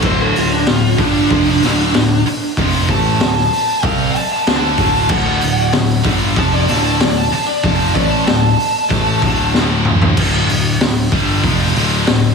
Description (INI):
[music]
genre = hard rock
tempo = 95 BPM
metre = 4/4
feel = straight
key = unclear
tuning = A4 = 440 Hz
[part]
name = high-gain lead guitar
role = melody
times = 0.0-9.5 s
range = D4 to A5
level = -18 LUFS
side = right 1 dB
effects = distortion, slapback echo, tape echo
[part]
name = scooped high-gain guitar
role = riff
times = 0.0-12.3 s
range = D2 to D4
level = -17 LUFS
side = left 1 dB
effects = distortion, slapback echo
[part]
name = modern bright picked electric bass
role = bass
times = 0.0-12.3 s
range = D1 to D2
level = -19 LUFS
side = left 1 dB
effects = none
[part]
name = raw garage drum kit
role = drums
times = 0.0-12.2 s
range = crash cymbal, hi-hat, kick drum, snare drum, toms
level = -17 LUFS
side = equal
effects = none
[sound]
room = moderate lush hall reverb, RT60 2.8 s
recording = big arena sound, studio ambience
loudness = -12 LUFS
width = side -4 dB against mid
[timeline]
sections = 0.0-10.2 A section; 10.2-12.3 B section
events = lead electric guitar solo 0.0-10.2; drum fill 9.5-10.2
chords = 0.0 D5